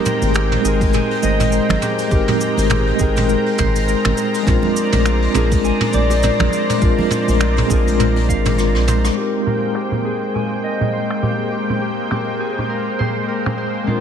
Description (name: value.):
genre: sunset chillout.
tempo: 102 BPM.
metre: 4/4.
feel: swing 58% on 16ths.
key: Ab lydian.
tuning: A4 = 440 Hz.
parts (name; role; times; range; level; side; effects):
mellow tine electric piano; accompaniment; 0.0-14.0 s; Ab3 to G5; -20 LUFS; left 1 dB; medium stereo tremolo, auto-pan, ping-pong delay.
lush unison pad; sustained chords; 0.0-14.0 s; Ab3 to Bb5; -23 LUFS; left 1 dB; chorus.
Celtic harp; arpeggios; 0.0-14.0 s; F4 to Ab5; -25 LUFS; equal; low-pass filter, ping-pong delay.
vintage brush drum kit; drums; 0.1-14.0 s; cabasa, finger snaps, hi-hat, rim click, toms; -23 LUFS; right 2 dB; low-pass filter on toms, low-pass filter on hats, low-pass filter on snare, low-pass filter on perc, low-pass filter on room.
round analog bass; bass; 0.2-9.1 s; Ab1 to Bb1; -18 LUFS; equal; none.
congas; percussion; 0.2-8.3 s; none; -27 LUFS; right 4 dB; none.
electronic kick drum; drums; 0.8-8.4 s; none; -20 LUFS; equal; overdrive.
room: light reverb, studio reverb.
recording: none.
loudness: -15 LUFS.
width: side -8 dB against mid.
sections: 0.0-9.2 A section; 9.2-14.0 B section.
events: drum fill 8.6-9.2; band accent 9.0; filter sweep on harp 9.2-14.0.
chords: 0.0 Abmaj9; 4.5 Bb9; 9.2 Abmaj9.